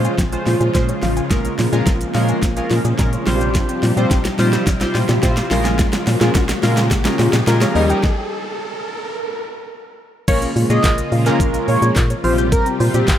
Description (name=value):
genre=dance-pop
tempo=107 BPM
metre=4/4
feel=straight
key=Bb dorian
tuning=A4 = 438 Hz
part: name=chorused polysynth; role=accompaniment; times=0.0-13.2 s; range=G3 to C5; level=-22 LUFS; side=equal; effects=sidechain pumping
part: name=string machine, violas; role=sustained chords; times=0.0-13.2 s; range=C3 to C5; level=-22 LUFS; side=equal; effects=ensemble chorus, sidechain pumping
part: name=soft round pluck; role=arpeggios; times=0.0-13.2 s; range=G3 to G6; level=-27 LUFS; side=left 3 dB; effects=chorus, sidechain pumping, digital delay
part: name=organ-like FM bass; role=bass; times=0.0-13.2 s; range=A1 to Bb2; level=-19 LUFS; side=equal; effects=sidechain pumping
part: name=pop drum kit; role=drums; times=0.0-13.2 s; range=crash cymbal, handclaps, hi-hat, kick drum, shaker, snare drum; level=-19 LUFS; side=equal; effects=none
part: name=riser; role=sound effects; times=0.3-9.2 s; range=none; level=-28 LUFS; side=equal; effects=none
part: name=octave-doubled lead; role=melody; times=10.3-13.0 s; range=Bb4 to Eb5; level=-22 LUFS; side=right 2 dB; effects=chorus, digital delay
room=light reverb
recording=rough home demo mix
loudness=-15 LUFS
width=side -10 dB against mid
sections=0.0-10.3 A section; 10.3-13.2 B section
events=build-up 0.0-10.3; drum fill 0.0-8.0; riser 0.3-10.3; stop 8.0-10.3; drop 10.3-13.2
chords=0.0 Dbmaj7/Bb; 1.3 Bbm7; 3.3 Fsus2/Bb; 5.5 Bbm7; 7.8 Eb7; 10.3 Bbm7; 12.2 Fsus2/Bb